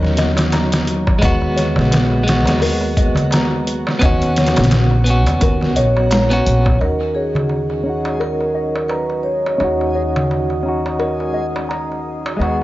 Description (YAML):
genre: trip hop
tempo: 86 BPM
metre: 4/4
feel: swing 57% on 16ths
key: Eb minor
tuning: A4 = 440 Hz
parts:
  - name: clean electric guitar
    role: accompaniment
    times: 0.0-12.6 s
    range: Gb3 to Gb4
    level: -20 LUFS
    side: equal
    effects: tremolo, low-pass filter, tape echo
  - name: music box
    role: arpeggios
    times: 0.0-12.6 s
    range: Bb4 to Bb5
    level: -26 LUFS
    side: left 2 dB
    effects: low-pass filter, analog delay
  - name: upright bass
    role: bass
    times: 0.0-12.6 s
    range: Bb1 to Eb2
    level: -20 LUFS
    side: equal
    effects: tube saturation
  - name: trip hop sampler-style drum kit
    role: drums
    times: 0.0-6.8 s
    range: hi-hat, kick drum, snare drum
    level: -18 LUFS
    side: equal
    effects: overdrive
  - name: darbuka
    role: percussion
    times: 0.0-12.6 s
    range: none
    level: -24 LUFS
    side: right 1 dB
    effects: none
  - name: backwards swelling texture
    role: texture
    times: 0.0-12.6 s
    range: Gb3 to Ab4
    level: -32 LUFS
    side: equal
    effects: none
  - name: vibraphone with medium mallets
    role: melody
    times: 5.8-9.9 s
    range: Ab4 to Db5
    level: -21 LUFS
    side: right 1 dB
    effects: vintage 12-bit sampler grit, tape echo
  - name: deep dark ambient pad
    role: sustained chords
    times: 8.1-12.6 s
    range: Gb4 to Eb6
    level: -27 LUFS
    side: right 2 dB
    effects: chorus, built-in reverb
room: studio reverb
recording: dry, gritty hardware recording, nothing above 7.6 kHz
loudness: -14 LUFS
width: side -16 dB against mid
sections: 0.0-6.8 A section; 6.8-12.6 B section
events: filter sweep on music box 6.8-12.6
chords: 0.0 Ebm7; 1.2 Abm7; 4.0 Db7sus4; 6.8 Ebm7